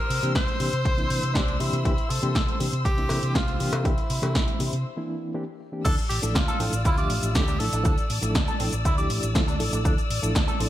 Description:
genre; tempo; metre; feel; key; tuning
nu-disco, nu disco; 120 BPM; 4/4; straight; D minor; A4 = 439 Hz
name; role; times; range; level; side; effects
breathy tenor saxophone; melody; 0.0-8.1 s; D4 to C5; -31 LUFS; equal; ping-pong delay
muted studio string section; sustained chords; 0.0-10.7 s; C5 to E6; -34 LUFS; left 3 dB; sidechain pumping
hollow-body short-scale fingered electric bass; bass; 0.1-10.7 s; A1 to C3; -28 LUFS; equal; tube saturation
house drum kit; drums; 0.1-10.7 s; crash cymbal, hi-hat, shaker, snare drum; -30 LUFS; right 1 dB; gated reverb
reed electric piano; accompaniment; 0.2-10.7 s; E3 to E5; -31 LUFS; equal; fast tremolo, ping-pong delay
electronic kick drum; drums; 0.4-10.5 s; none; -26 LUFS; equal; none
cowbell; percussion; 3.1-4.3 s; none; -35 LUFS; left 3 dB; none
electric guitar with an envelope filter; riff; 5.9-10.6 s; C4 to D5; -33 LUFS; right 1 dB; lush chorus, ping-pong delay
room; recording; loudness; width
light reverb; bright 1980s-style digital production; -22 LUFS; side -13 dB against mid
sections
0.0-5.9 A section; 5.9-10.7 B section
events
break 4.9-5.9; drop 5.9-10.7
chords
0.0 C7; 5.9 Dmadd9

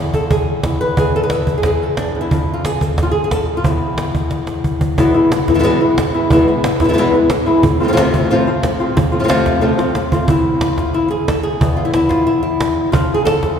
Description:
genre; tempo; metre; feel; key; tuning
flamenco; 181 BPM; 4/4; straight; unclear; A4 = 440 Hz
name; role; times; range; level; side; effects
flamenco guitar; melody; 0.0-13.6 s; E2 to B4; -15 LUFS; left 1 dB; none
cajon; percussion; 0.1-13.6 s; none; -18 LUFS; right 1 dB; none
room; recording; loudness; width
wet cathedral reverb, RT60 4.4 s; recorded in a church or concert hall; -13 LUFS; side -7 dB against mid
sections
0.0-5.0 A section; 5.0-10.3 B section; 10.3-13.6 C section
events
drum fill 4.3-5.0, 9.8-10.3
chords
0.0 N.C.; 5.0 E; 7.6 F; 10.3 E; 12.9 F

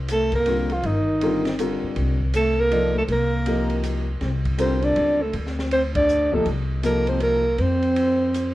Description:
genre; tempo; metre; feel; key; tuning
modal jazz; 160 BPM; 3/4; swing 64% on 8ths; C dorian; A4 = 441 Hz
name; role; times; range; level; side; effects
upright bass; bass; 0.0-8.5 s; G1 to F2; -25 LUFS; equal; none
breathy alto saxophone; melody; 0.1-8.5 s; Eb4 to D5; -23 LUFS; equal; plate reverb
breathy trombone; second line; 0.1-8.5 s; Eb3 to D4; -25 LUFS; right 2 dB; none
open jazz drum kit; drums; 0.1-8.5 s; hi-hat, kick drum, ride cymbal, snare drum; -33 LUFS; equal; none
warm upright piano; accompaniment; 0.5-7.4 s; C3 to D5; -26 LUFS; left 2 dB; none
room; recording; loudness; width
light reverb; worn, warbling old tape, cassette tape, warbly pitch drift; -19 LUFS; side -16 dB against mid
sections
0.0-8.5 A section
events
band accent 5.9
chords
0.0 Cm9; 4.2 Gmadd9/C; 7.6 F5

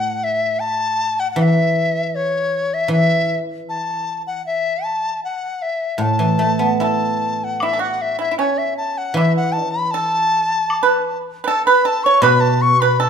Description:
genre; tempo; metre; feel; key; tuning
chinese traditional, Chinese chamber ensemble; 78 BPM; 4/4; straight; A gong mode; A4 = 440 Hz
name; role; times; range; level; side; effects
large dizi; melody; 0.0-13.1 s; C#5 to C#6; -19 LUFS; left 2 dB; none
guzheng; accompaniment; 0.0-13.1 s; A2 to E4; -20 LUFS; right 1 dB; none
pipa; second line; 6.8-13.1 s; C#4 to C#5; -18 LUFS; right 5 dB; none
woodblock; percussion; 7.6-12.4 s; none; -29 LUFS; left 2 dB; none
room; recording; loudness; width
moderate recital hall reverb, RT60 1.4 s; minimal, uncompressed stereo recording; -16 LUFS; side -7 dB against mid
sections
0.0-7.6 A section; 7.6-13.1 B section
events
none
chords
none

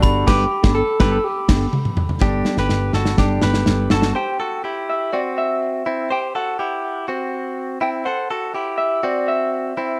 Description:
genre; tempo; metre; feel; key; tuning
jangly indie pop; 123 BPM; 4/4; straight; unclear; A4 = 440 Hz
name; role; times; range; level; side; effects
electric guitar through a small old amp; melody; 0.0-10.0 s; F#4 to A5; -25 LUFS; equal; spring reverb, delay
mellow electric guitar; accompaniment; 0.0-4.2 s; G3 to A4; -26 LUFS; equal; none
direct-recorded clean electric guitar; arpeggios; 0.0-10.0 s; G3 to C5; -26 LUFS; equal; none
vintage muted picked electric bass; bass; 0.0-4.1 s; G1; -24 LUFS; equal; none
modern studio drum kit; drums; 0.0-4.1 s; crash cymbal, hi-hat, kick drum, snare drum, toms; -21 LUFS; equal; none
room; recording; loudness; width
light reverb; none; -20 LUFS; mono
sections
0.0-2.2 A section; 2.2-4.2 B section; 4.2-10.0 C section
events
band accent 0.3-2.2; drum fill 1.2-2.2, 2.2-4.2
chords
0.0 Gadd9; 4.2 C

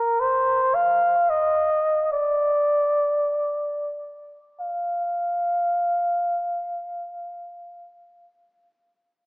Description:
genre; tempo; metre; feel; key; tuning
amapiano; free time; none; none; unclear; A4 = 440 Hz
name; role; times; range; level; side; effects
trumpet with cup mute; melody; 0.0-7.6 s; Bb4 to F5; -21 LUFS; equal; low-pass filter, analog delay
room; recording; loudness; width
light reverb, small room ambience; echo-heavy mix, small speaker sound; -20 LUFS; side -37 dB against mid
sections
0.0-4.6 A section; 4.6-6.8 B section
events
filter sweep on muted trumpet 0.0-4.6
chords
none

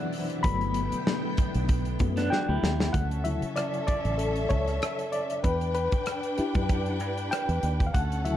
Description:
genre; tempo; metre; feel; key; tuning
lush 1970s-style soul; 96 BPM; 4/4; swing 54% on 16ths; unclear; A4 = 440 Hz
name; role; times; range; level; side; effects
barky reed electric piano; accompaniment; 0.0-8.4 s; C#3 to B5; -30 LUFS; left 2 dB; overdrive, fast tremolo
string machine, violins; sustained chords; 0.0-2.9 s; B2 to G5; -35 LUFS; left 1 dB; ensemble chorus
modern studio drum kit; drums; 0.1-8.4 s; hi-hat, kick drum, rim click, snare drum; -29 LUFS; equal; none
fingered electric bass; bass; 0.4-8.4 s; G1 to G2; -29 LUFS; equal; none
electric guitar through a small old amp; riff; 2.2-2.9 s; B3 to G4; -31 LUFS; right 2 dB; tremolo
warm studio string section; second line; 2.9-8.4 s; C#4 to G5; -33 LUFS; equal; none
room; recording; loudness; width
light reverb, studio reverb; dark, warm production; -25 LUFS; side -12 dB against mid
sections
0.0-2.9 A section; 2.9-8.4 B section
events
reed electric piano solo 0.0-2.9, 2.9-8.4; drum fill 2.3-2.9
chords
0.4 Gmaj7; 2.9 Dmaj9; 5.4 Em9

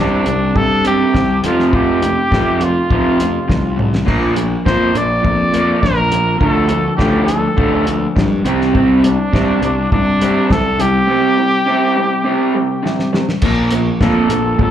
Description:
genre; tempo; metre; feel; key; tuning
indie rock; 103 BPM; 4/4; straight; unclear; A4 = 440 Hz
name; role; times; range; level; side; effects
warm trumpet; melody; 0.0-14.7 s; D4 to D5; -18 LUFS; equal; slapback echo, digital delay
raw garage guitar; riff; 0.0-14.7 s; F2 to C4; -16 LUFS; right 1 dB; overdrive, slapback echo
fuzz picked electric bass; bass; 0.0-14.7 s; Bb1 to G2; -18 LUFS; left 1 dB; overdrive
cloth-damped thuddy drum kit; drums; 0.3-14.7 s; crash cymbal, hi-hat, kick drum, snare drum, toms; -18 LUFS; equal; none
room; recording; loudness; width
small room ambience; live gig heard through the venue's PA, club reverb; -12 LUFS; side -10 dB against mid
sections
0.0-13.4 A section; 13.4-14.7 B section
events
drum fill 3.8, 12.8-13.4; trumpet solo 13.4-14.7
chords
0.0 Csus2; 1.4 F5; 4.1 Bb; 6.4 Dm; 8.5 Csus2; 13.4 Bb5

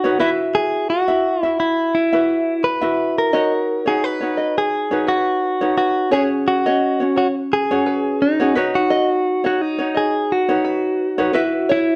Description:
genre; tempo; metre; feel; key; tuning
acoustic pop; 86 BPM; 4/4; swing 55% on 16ths; B major; A4 = 440 Hz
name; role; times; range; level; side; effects
direct-recorded clean electric guitar; melody; 0.0-12.0 s; D#4 to B4; -21 LUFS; equal; none
ukulele; accompaniment; 0.0-12.0 s; C#4 to E5; -23 LUFS; equal; none
open-back banjo; arpeggios; 3.3-11.9 s; B4 to F#5; -26 LUFS; equal; none
room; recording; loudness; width
moderate studio reverb, RT60 0.8 s; worn, warbling old tape, cassette tape, warbly pitch drift; -19 LUFS; mono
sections
0.0-12.0 A section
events
none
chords
0.2 Esus2; 3.3 Badd9; 6.1 C#sus4; 8.6 Badd9; 11.3 Esus2

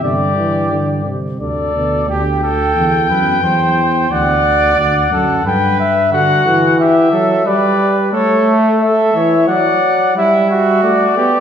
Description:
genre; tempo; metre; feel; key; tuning
classical, imitative canzona for brass ensemble; 89 BPM; 3/4; straight; G major; A4 = 440 Hz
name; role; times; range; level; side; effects
mellow trumpet; melody; 0.0-11.4 s; C#5 to G5; -15 LUFS; left 4 dB; none
warm trumpet; second line; 0.0-11.4 s; E4 to D5; -18 LUFS; right 5 dB; none
mellow trombone; accompaniment; 0.0-2.1, 6.1-11.4 s; B2 to B3; -15 LUFS; right 1 dB; none
dark bass trombone; bass; 0.0-6.1 s; D2 to G2; -19 LUFS; right 1 dB; none
room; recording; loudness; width
wet recital hall reverb, RT60 1.5 s; recorded in a church or concert hall; -11 LUFS; side -8 dB against mid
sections
0.0-2.1 A section; 2.1-10.2 B section; 10.2-11.4 C section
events
none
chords
0.0 Dsus4/G; 1.4 D5; 2.1 G/D; 3.4 C/E; 4.1 D; 5.5 G; 6.1 D; 7.5 G; 8.1 A; 9.5 D/F#; 10.2 Em/G

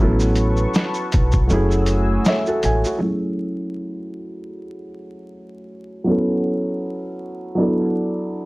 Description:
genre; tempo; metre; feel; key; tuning
lo-fi hip hop; 79 BPM; 4/4; swing 56% on 16ths; F# minor; A4 = 438 Hz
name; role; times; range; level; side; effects
felt-muted upright piano; accompaniment; 0.0-8.5 s; F#3 to G#5; -21 LUFS; equal; cassette tape, low-pass filter
dark analog pad; sustained chords; 0.2-3.0 s; A3 to E6; -28 LUFS; equal; chorus, low-pass filter
upright bass; bass; 0.0-2.8 s; F#1 to B1; -19 LUFS; equal; none
lo-fi sampler-style drum kit; drums; 0.2-3.0 s; hi-hat, kick drum, shaker, snare drum; -20 LUFS; equal; overdrive
room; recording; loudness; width
light reverb; vinyl crackle; -18 LUFS; side -22 dB against mid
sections
0.0-3.0 A section; 3.0-8.5 B section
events
kick muted 1.5-3.0; felt piano fill 1.9-3.0; filter sweep on felt piano 3.0-8.5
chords
0.0 A69; 1.5 F#m9; 6.1 A69; 7.6 E9sus4

